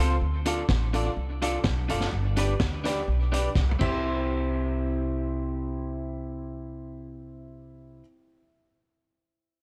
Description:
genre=ska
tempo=126 BPM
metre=4/4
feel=swing 53% on 8ths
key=C major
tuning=A4 = 440 Hz
part: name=electric guitar at the edge of break-up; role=accompaniment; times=0.0-8.1 s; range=C4 to D5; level=-35 LUFS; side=equal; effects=spring reverb, tape echo
part: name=warm upright piano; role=stabs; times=0.0-8.0 s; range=D4 to F5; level=-36 LUFS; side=equal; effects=none
part: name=upright bass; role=bass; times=0.0-8.0 s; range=F#1 to D2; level=-31 LUFS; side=equal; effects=none
part: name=vintage drum kit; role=drums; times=0.5-3.9 s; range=crash cymbal, hi-hat, kick drum, snare drum, toms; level=-32 LUFS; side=equal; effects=none
room=small room ambience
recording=none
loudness=-27 LUFS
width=mono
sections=0.0-4.0 A section; 4.0-7.9 B section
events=drum fill 3.6-4.0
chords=0.2 Dm; 2.1 G; 3.8 C

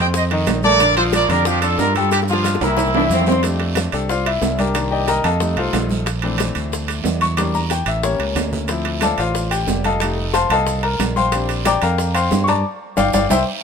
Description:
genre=latin, salsa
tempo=182 BPM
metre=4/4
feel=straight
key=F major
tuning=A4 = 440 Hz
part: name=clear horn section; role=melody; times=0.0-3.3 s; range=C4 to G5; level=-18 LUFS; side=right 2 dB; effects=none
part: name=clear baby grand piano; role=accompaniment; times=0.0-13.4 s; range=D3 to D6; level=-20 LUFS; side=left 5 dB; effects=none
part: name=modern bright fingered electric bass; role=bass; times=0.0-13.4 s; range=F1 to G2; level=-22 LUFS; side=right 1 dB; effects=none
part: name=bongos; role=percussion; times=0.1-13.4 s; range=none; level=-28 LUFS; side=left 7 dB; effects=none
part: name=guiro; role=percussion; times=0.1-13.4 s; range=none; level=-32 LUFS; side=right 8 dB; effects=none
part: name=maracas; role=percussion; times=0.1-13.4 s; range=none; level=-33 LUFS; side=right 6 dB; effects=none
part: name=congas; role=percussion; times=0.2-13.4 s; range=none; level=-27 LUFS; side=right 2 dB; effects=none
part: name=timbales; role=percussion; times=0.3-13.4 s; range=none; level=-25 LUFS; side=right 8 dB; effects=none
part: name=clear saxophone section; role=second line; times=3.0-3.4 s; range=C4 to D4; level=-25 LUFS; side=equal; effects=none
room=light reverb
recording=minimal, uncompressed stereo recording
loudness=-16 LUFS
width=side -6 dB against mid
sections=0.0-3.4 A section; 3.4-13.6 B section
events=drum fill 2.1-3.4, 7.4-8.7, 13.5; grand piano solo 3.4-13.6; band accent 12.6-13.6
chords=0.1 F7; 0.8 Bbmaj7; 2.1 Gm7; 2.8 C7; 3.4 F69; 4.8 Cm9; 5.4 F9; 6.1 Bbmaj9#11; 7.4 Em7b5; 8.0 A7b9; 8.7 Dm7; 10.0 F7; 11.3 Bb69; 12.6 G5

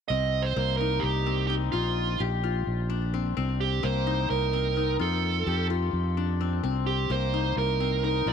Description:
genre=progressive instrumental, band music in an uneven meter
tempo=257 BPM (eighths)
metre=7/8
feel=straight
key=C dorian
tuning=A4 = 442 Hz
part: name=dark smooth lead guitar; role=melody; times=0.1-8.3 s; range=F4 to Eb5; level=-29 LUFS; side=right 10 dB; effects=overdrive
part: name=qanun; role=arpeggios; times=0.1-8.3 s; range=Bb3 to G4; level=-30 LUFS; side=left 13 dB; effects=slapback echo
part: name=fingered electric bass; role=bass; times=0.1-8.3 s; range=Bb1 to F2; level=-28 LUFS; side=equal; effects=none
room=light reverb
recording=1960s-style stereo with parts hard left and right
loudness=-24 LUFS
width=side -7 dB against mid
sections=0.1-8.3 A section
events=none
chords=0.1 Cm7; 1.7 Gm7/Bb; 3.4 Cm7; 5.0 F; 6.6 Cm7

